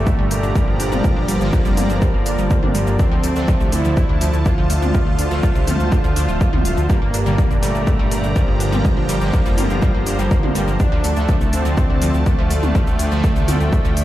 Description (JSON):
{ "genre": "melodic techno", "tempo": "123 BPM", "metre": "4/4", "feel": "straight", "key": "G minor", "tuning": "A4 = 440 Hz", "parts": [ { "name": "soft supersaw", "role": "melody", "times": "0.0-14.0 s", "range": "F3 to F4", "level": "-25 LUFS", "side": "equal", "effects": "sidechain pumping, digital delay" }, { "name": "sweeping resonant pad", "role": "sustained chords", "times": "0.0-14.0 s", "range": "F3 to Bb5", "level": "-29 LUFS", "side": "equal", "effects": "chorus, sidechain pumping" }, { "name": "analog synth brass", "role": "stabs", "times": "0.0-14.0 s", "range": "Bb2 to Bb3", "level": "-24 LUFS", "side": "right 2 dB", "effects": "chorus, sidechain pumping, digital delay" }, { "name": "dark detuned saw bass", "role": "bass", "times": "0.0-14.0 s", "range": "D1 to D2", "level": "-21 LUFS", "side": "equal", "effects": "sidechain pumping" }, { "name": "impact", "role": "sound effects", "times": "0.0-1.0 s", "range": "none", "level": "barely audible", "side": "none", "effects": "none" }, { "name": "wide unison pluck", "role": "arpeggios", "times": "0.1-14.0 s", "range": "F3 to F5", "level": "-27 LUFS", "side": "equal", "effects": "sidechain pumping, digital delay" }, { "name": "electronic kick drum", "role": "drums", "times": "0.1-13.8 s", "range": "none", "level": "-18 LUFS", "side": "equal", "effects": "none" }, { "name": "techno drum kit", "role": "drums", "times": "0.1-14.0 s", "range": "hi-hat, shaker, toms", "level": "-27 LUFS", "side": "left 1 dB", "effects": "none" } ], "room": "light reverb, digital ambience", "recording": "played on a big sound system in a bare room, stone room reverb", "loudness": "-15 LUFS", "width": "side -14 dB against mid", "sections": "0.0-14.0 A section", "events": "impact 0.0-1.0", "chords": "0.0 Gm; 3.0 Dm; 6.9 Gm; 10.8 Dm" }